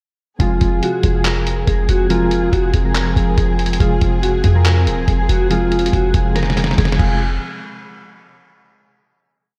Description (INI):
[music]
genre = hip hop, trap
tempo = 141 BPM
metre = 4/4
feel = half-time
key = F phrygian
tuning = A4 = 440 Hz
[part]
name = mellow electric guitar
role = melody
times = 0.4-7.2 s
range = F4 to Bb4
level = -25 LUFS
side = equal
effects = ensemble chorus, tape echo
[part]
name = soft electric-piano-like synth keys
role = accompaniment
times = 0.4-7.2 s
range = C3 to Bb4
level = -24 LUFS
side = equal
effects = chorus, tremolo
[part]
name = dark studio string section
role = sustained chords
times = 0.4-7.2 s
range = F3 to Ab4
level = -29 LUFS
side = equal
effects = none
[part]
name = clean 808-style bass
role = bass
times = 0.4-7.4 s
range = Eb1 to F2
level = -20 LUFS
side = equal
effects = none
[part]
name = lo-fi sampler-style drum kit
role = drums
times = 0.4-7.1 s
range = crash cymbal, handclaps, hi-hat, kick drum, snare drum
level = -22 LUFS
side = equal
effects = none
[sound]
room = moderate lush hall reverb, RT60 1.9 s, digital ambience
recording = dreamy mix soaked in reverb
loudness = -16 LUFS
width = mono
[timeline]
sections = 0.4-7.2 hook; 7.2-8.9 final hit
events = drum fill 6.4-7.2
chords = 0.4 Fm; 7.2 N.C.